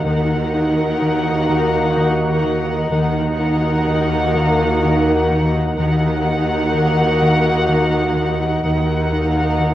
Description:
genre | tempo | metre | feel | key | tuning
cinematic, suspense film score | 63 BPM | 3/4 | straight | Eb minor | A4 = 440 Hz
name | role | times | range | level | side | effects
muted studio violin section | melody | 0.0-9.7 s | Gb5 | -24 LUFS | left 1 dB | none
muted studio violin section | second line | 0.0-9.7 s | Bb4 | -25 LUFS | left 2 dB | none
muted studio viola section | accompaniment | 0.0-9.7 s | Eb4 | -24 LUFS | right 2 dB | none
glass harmonica | sustained chords | 0.0-9.7 s | Eb5 to Bb5 | -28 LUFS | left 1 dB | none
mellow French horn section | sustained chords | 0.0-9.7 s | Bb3 to Gb4 | -24 LUFS | left 1 dB | none
muted studio cello section | bass | 0.0-9.7 s | Eb3 | -24 LUFS | right 1 dB | none
muted studio double bass section | bass | 0.0-9.7 s | Eb2 | -22 LUFS | right 2 dB | none
round analog bass | riff | 0.1-9.7 s | Eb3 to Eb4 | -23 LUFS | left 2 dB | none
room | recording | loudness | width
wet scoring stage reverb, RT60 1.9 s | worn, warbling old tape, cassette tape, warbly pitch drift | -15 LUFS | side -13 dB against mid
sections
0.0-9.7 A section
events
none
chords
0.0 Ebm

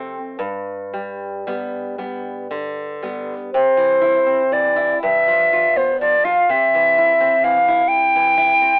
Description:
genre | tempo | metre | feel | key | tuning
romantic duo for flute and classical guitar | 36-44 BPM (dotted quarters) | 6/8 | rubato | C major | A4 = 445 Hz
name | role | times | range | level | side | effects
nylon-string guitar | accompaniment | 0.0-8.8 s | F2 to F4 | -27 LUFS | equal | cassette tape
concert flute | melody | 3.5-8.8 s | C5 to G5 | -16 LUFS | equal | cassette tape
room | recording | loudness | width
light reverb | home recording on cassette, telephone sound | -17 LUFS | mono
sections
0.0-3.5 A section; 3.5-8.8 B section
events
none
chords
0.4 G; 3.5 C; 5.0 G7; 6.5 C

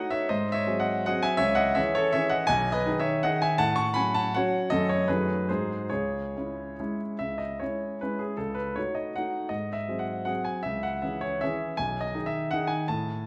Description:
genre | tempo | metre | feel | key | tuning
classical, romantic triple-time dance for piano with dotted rhythms | 129-174 BPM | 3/4 | rubato | C# minor | A4 = 440 Hz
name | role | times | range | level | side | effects
warm concert grand piano | solo | 0.0-13.3 s | B1 to C#6 | -28 LUFS | equal | none
room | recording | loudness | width
wet recital hall reverb, RT60 1.6 s | none | -28 LUFS | mono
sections
0.0-7.2 A section; 7.2-13.3 B section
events
none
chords
0.3 G#7; 1.4 C#m; 2.5 G#m/B; 3.6 F#m/A; 4.7 F#m; 5.1 D#dim/F#; 5.5 G#7; 5.9 C#m; 8.4 D#dim/C#; 9.5 G#7; 10.7 C#m; 11.8 G#m/B

